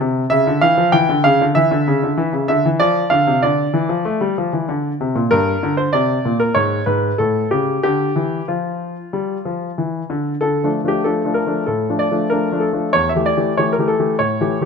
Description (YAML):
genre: classical-period piano sonatina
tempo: 95 BPM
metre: 4/4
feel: straight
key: D minor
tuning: A4 = 436 Hz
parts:
  - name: clear grand piano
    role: solo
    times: 0.0-14.7 s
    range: E2 to G5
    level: -15 LUFS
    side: left 1 dB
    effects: none
room: light reverb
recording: close, detailed microphones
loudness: -15 LUFS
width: side -5 dB against mid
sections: 0.0-10.4 A section; 10.4-14.7 A section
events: none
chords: 0.3 C#dim; 2.8 Dm; 5.3 Gm; 6.6 N.C.; 7.2 A7; 7.8 Dm; 12.9 A7/E